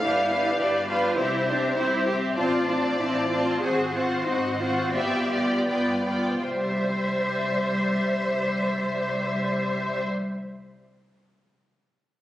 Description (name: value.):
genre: quick classical-period movement for string orchestra.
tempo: 77-105 BPM.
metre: 4/4.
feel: rubato.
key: C major.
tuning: A4 = 440 Hz.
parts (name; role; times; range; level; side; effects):
warm symphonic violin section; melody; 0.0-10.0 s; B4 to F5; -30 LUFS; left 2 dB; none.
warm symphonic violin section; second line; 0.0-10.0 s; B4 to A5; -30 LUFS; left 1 dB; none.
rich symphonic viola section; accompaniment; 0.0-10.0 s; G3 to G4; -27 LUFS; equal; none.
warm studio cello section; bass; 0.0-10.0 s; D4 to C5; -28 LUFS; equal; none.
warm symphonic double bass section; bass; 0.0-10.0 s; G1 to C2; -36 LUFS; equal; none.
room: moderate scoring stage reverb, RT60 1.5 s.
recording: recorded on a phone in the room, club reverb, compression.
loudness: -22 LUFS.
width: side -14 dB against mid.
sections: 0.0-6.4 A section; 6.4-9.4 B section.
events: slowing down 0.0-6.4.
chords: 0.0 G7; 1.2 C; 2.4 F/A; 3.6 Ab7; 4.9 G7; 6.4 C.